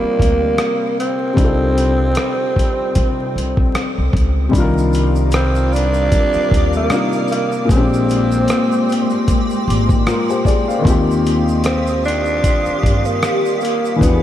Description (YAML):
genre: lo-fi hip hop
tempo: 76 BPM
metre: 4/4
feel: swing 57% on 16ths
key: C minor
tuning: A4 = 440 Hz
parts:
  - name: growling tenor saxophone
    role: melody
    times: 0.0-14.2 s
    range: Bb3 to D4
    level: -20 LUFS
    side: right 2 dB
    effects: none
  - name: dark upright piano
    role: accompaniment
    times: 0.0-14.2 s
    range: Bb2 to F5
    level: -19 LUFS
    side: left 3 dB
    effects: none
  - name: upright bass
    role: bass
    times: 0.0-14.2 s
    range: Ab1 to C3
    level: -19 LUFS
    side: equal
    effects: none
  - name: dusty soul sampler-style drum kit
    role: drums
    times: 0.2-14.2 s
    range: hi-hat, kick drum, rim click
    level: -19 LUFS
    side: equal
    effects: none
  - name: granular cloud pad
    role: sustained chords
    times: 5.5-14.2 s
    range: Ab3 to E6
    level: -24 LUFS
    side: equal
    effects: built-in reverb, ensemble chorus
  - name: tube shaker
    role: percussion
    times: 4.5-14.2 s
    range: none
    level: -40 LUFS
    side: right 9 dB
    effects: none
room: moderate huge ambient reverb, RT60 6.8 s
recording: dreamy mix soaked in reverb, vinyl crackle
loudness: -14 LUFS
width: side -11 dB against mid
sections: 0.0-4.5 A section; 4.5-14.2 A section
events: none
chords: 0.0 Cm11; 7.7 Bb13; 10.9 Eb69